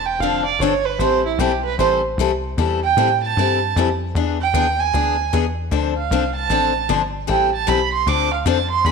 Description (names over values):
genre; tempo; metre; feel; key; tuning
acoustic string swing (jazz manouche); 153 BPM; 4/4; swing 63% on 8ths; A minor; A4 = 440 Hz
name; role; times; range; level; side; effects
warm violin; melody; 0.0-8.9 s; E4 to D6; -20 LUFS; right 9 dB; none
tight sequencer bass; bass; 0.0-8.9 s; E1 to A2; -23 LUFS; left 1 dB; none
picked steel-string acoustic guitar; accompaniment; 0.2-8.9 s; D3 to A4; -21 LUFS; left 10 dB; none
room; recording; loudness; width
moderate echo chamber reverb, RT60 1.4 s, small room reverb; 1960s-style stereo with parts hard left and right; -16 LUFS; side -5 dB against mid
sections
0.0-8.9 A section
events
violin solo 0.0-8.9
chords
0.0 Am7; 4.1 E7; 5.7 Dm7; 7.3 Am9; 8.1 Dm7